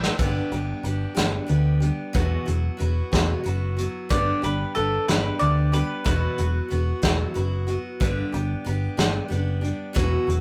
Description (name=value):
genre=folk rock and heartland rock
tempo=61 BPM (dotted quarters)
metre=6/8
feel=straight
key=unclear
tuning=A4 = 440 Hz
part: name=picked steel-string acoustic guitar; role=accompaniment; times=0.0-10.4 s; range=E2 to G4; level=-31 LUFS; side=equal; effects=none
part: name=hollow-body short-scale picked electric bass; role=bass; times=0.0-10.4 s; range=E1 to D2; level=-27 LUFS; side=equal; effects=none
part: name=soft brush drum kit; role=drums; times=0.0-10.4 s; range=hi-hat, kick drum, snare drum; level=-27 LUFS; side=equal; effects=none
part: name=mandolin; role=second line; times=4.1-7.6 s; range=A4 to D5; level=-29 LUFS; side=equal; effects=none
room=moderate studio reverb, RT60 0.5 s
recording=rough rehearsal-room recording, warm saturation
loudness=-24 LUFS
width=mono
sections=0.2-10.4 A section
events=drum fill 0.0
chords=0.2 G; 2.1 Esus2; 4.1 G; 6.1 Esus2; 8.0 G